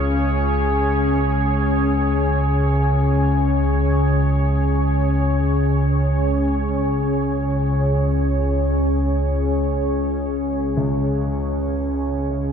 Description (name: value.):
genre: dark ambient drone.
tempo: free time.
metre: none.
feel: none.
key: unclear.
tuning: A4 = 440 Hz.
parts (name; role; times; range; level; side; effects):
deep dark ambient pad; sustained chords; 0.0-12.5 s; C#4 to C#5; -23 LUFS; equal; chorus, built-in reverb.
analog drone; drone; 0.0-12.5 s; C#2 to C#3; -19 LUFS; equal; chorus.
dark concert grand piano; arpeggios; 10.8-12.5 s; C#2; -26 LUFS; equal; none.
room: wet huge ambient reverb, RT60 8.6 s.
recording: none.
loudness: -17 LUFS.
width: side -7 dB against mid.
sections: 0.0-12.5 A section.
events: fade-out 9.7-12.5.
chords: 0.0 C#5.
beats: free time.